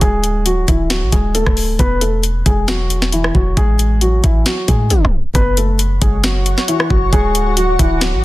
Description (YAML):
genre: hip hop, trap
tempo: 135 BPM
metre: 4/4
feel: half-time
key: F# minor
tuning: A4 = 439 Hz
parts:
  - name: dark concert grand piano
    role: melody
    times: 0.0-8.2 s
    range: E3 to B4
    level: -18 LUFS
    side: equal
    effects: low-pass filter, tape echo
  - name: clean 808-style bass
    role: bass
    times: 0.0-8.2 s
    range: D1 to A2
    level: -16 LUFS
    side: equal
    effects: none
  - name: trap drum kit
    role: drums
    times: 0.0-8.1 s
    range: hi-hat, kick drum, rim click, snare drum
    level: -16 LUFS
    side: equal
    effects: soft clipping on snare
  - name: granular cloud pad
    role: sustained chords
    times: 6.1-8.2 s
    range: F#4 to D6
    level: -22 LUFS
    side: left 2 dB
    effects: built-in reverb
room: digital ambience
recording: dense, heavily limited modern master, tape stop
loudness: -12 LUFS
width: side -17 dB against mid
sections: 0.0-5.3 A section; 5.3-8.2 B section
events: tape stop 4.9-5.3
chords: 0.0 D; 1.8 E; 3.6 A5; 5.3 F#m; 7.1 D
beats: | 0.01 0.46 0.90 1.35 | 1.79 2.24 2.68 3.13 | 3.57 4.01 4.46 4.90 | 5.35 5.79 6.24 6.68 | 7.13 7.57 8.02